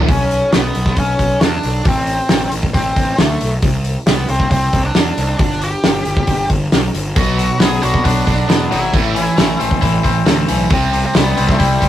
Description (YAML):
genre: quiet-loud alternative rock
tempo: 136 BPM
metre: 4/4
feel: straight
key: unclear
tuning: A4 = 444 Hz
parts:
  - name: scooped high-gain guitar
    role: riff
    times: 0.0-0.1, 7.2-11.9 s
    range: A2 to C4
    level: -21 LUFS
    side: right 6 dB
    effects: distortion
  - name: octave-fuzz lead guitar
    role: melody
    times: 0.1-11.9 s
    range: G3 to G#5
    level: -19 LUFS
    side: equal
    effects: distortion
  - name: fuzz picked electric bass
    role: bass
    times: 0.1-11.9 s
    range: G1 to E2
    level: -19 LUFS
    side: equal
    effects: overdrive
  - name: loose indie drum kit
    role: drums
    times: 0.1-11.9 s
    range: hi-hat, kick drum, snare drum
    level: -16 LUFS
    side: equal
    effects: none
  - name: twangy electric guitar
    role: arpeggios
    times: 7.2-11.9 s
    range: A2 to F#4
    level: -19 LUFS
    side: left 5 dB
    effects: none
room: light reverb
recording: rough rehearsal-room recording, tube saturation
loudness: -13 LUFS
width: side -12 dB against mid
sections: 0.1-11.9 A section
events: none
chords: 0.1 Bm; 1.9 Am; 3.6 N.C.; 5.4 G5; 7.2 Bm; 8.9 Am; 10.7 C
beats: | 0.09 0.53 0.97 1.41 | 1.85 2.29 2.74 3.18 | 3.62 4.06 4.51 4.95 | 5.39 5.83 6.28 6.72 | 7.16 7.61 8.05 8.49 | 8.94 9.38 9.82 10.27 | 10.71 11.15 11.60